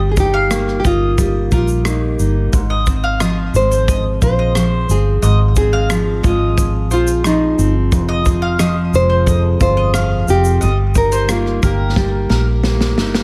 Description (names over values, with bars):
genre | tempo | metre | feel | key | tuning
acoustic pop | 89 BPM | 4/4 | straight | Ab major | A4 = 440 Hz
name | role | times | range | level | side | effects
nylon-string guitar | melody | 0.0-12.9 s | Eb4 to C5 | -21 LUFS | equal | none
fingerpicked steel-string acoustic guitar | accompaniment | 0.0-13.2 s | F2 to G4 | -22 LUFS | equal | none
vintage muted fingered electric bass | bass | 0.0-13.2 s | F1 to Bb1 | -20 LUFS | equal | none
natural country drum kit | drums | 0.2-13.2 s | kick drum, rim click, shaker, snare drum | -22 LUFS | equal | none
mandolin | arpeggios | 0.3-12.5 s | Bb4 to F5 | -27 LUFS | equal | delay
room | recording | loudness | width
little or no reverb | none | -15 LUFS | mono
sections
0.0-13.2 A section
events
drum fill 12.0-13.2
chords
0.0 Eb/G; 2.5 Ab6; 7.9 Fm; 10.6 Eb/G